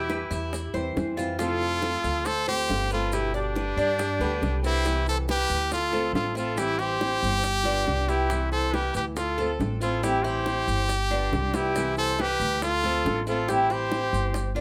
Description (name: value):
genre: latin, Cuban son and guajira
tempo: 139 BPM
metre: 4/4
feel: straight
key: C major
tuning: A4 = 439 Hz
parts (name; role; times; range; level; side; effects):
- brilliant trumpet; melody; 0.0-14.5 s; D4 to A4; -29 LUFS; equal; none
- breathy bright jazz flute; second line; 0.0-14.5 s; G4 to C5; -35 LUFS; equal; none
- flamenco guitar; accompaniment; 0.0-14.6 s; B2 to G4; -36 LUFS; equal; none
- Cuban tres; arpeggios; 0.0-14.6 s; C4 to F5; -34 LUFS; equal; none
- upright bass; bass; 0.0-14.6 s; G1 to G2; -33 LUFS; equal; none
- bongos; percussion; 0.1-14.6 s; none; -36 LUFS; equal; none
- maracas; percussion; 0.1-14.6 s; none; -47 LUFS; equal; none
room: moderate studio reverb, RT60 0.5 s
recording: none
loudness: -26 LUFS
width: mono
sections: 0.0-4.9 A section; 4.9-14.6 B section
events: drum fill 11.5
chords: 0.0 Em; 0.5 C/E; 1.4 F; 2.3 Dm7; 3.1 G; 4.9 Cmaj9; 5.7 Dm7; 6.6 Am7; 7.4 G7; 8.3 Cmaj9; 9.2 Dm7; 10.0 Am7; 10.9 G7; 11.8 Cmaj9; 12.6 Dm7; 13.5 Am7